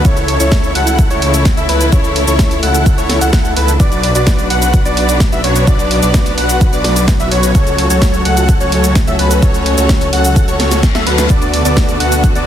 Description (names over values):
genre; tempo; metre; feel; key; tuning
EDM, festival progressive house; 128 BPM; 4/4; straight; F# minor; A4 = 440 Hz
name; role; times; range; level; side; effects
wide unison lead; arpeggios; 0.0-12.5 s; B4 to F#5; -18 LUFS; equal; sidechain pumping, ping-pong delay
dense compressed supersaw; riff; 0.0-12.5 s; B3 to F#5; -18 LUFS; equal; sidechain pumping, ping-pong delay
wide detuned saw bass; bass; 0.0-12.5 s; B1 to D2; -16 LUFS; equal; chorus, sidechain pumping
house drum kit; drums; 0.0-12.4 s; cabasa, hi-hat, snare drum; -19 LUFS; right 1 dB; none
downlifter and reverse cymbal; sound effects; 0.0-0.1, 10.6-11.3 s; none; -25 LUFS; left 6 dB; none
warm chamber string section; sustained chords; 0.1-12.5 s; C#3 to F#4; -20 LUFS; left 2 dB; sidechain pumping
electronic kick drum; drums; 0.1-12.3 s; none; -12 LUFS; equal; none
room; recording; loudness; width
little or no reverb; dense, heavily limited modern master; -10 LUFS; side -10 dB against mid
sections
0.0-12.5 A section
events
reverse cymbal 10.6-11.3; drum fill 10.6-11.3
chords
0.1 A/C#; 3.8 Bm; 7.5 F#m/C#; 11.3 D6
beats
| 0.05 0.52 0.99 1.46 | 1.93 2.39 2.86 3.33 | 3.80 4.27 4.74 5.21 | 5.67 6.14 6.61 7.08 | 7.55 8.02 8.49 8.96 | 9.43 9.89 10.36 10.83 | 11.30 11.77 12.24